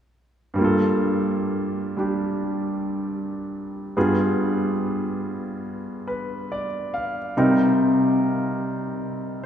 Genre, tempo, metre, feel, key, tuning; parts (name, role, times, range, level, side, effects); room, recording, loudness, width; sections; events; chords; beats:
jazz; 71 BPM; 4/4; swing 67% on 8ths; G minor; A4 = 440 Hz
clear concert grand piano; accompaniment; 0.5-9.5 s; G2 to F5; -21 LUFS; equal
wet cathedral reverb, RT60 5.2 s; recorded in a church or concert hall, faint mains hum; -21 LUFS; side -9 dB against mid
0.6-9.5 A section
0.6 Gm7; 4.0 G7b9; 7.3 Cm7
| 0.58 1.43 2.28 3.12 | 3.96 4.80 5.65 6.49 | 7.33 8.17 9.01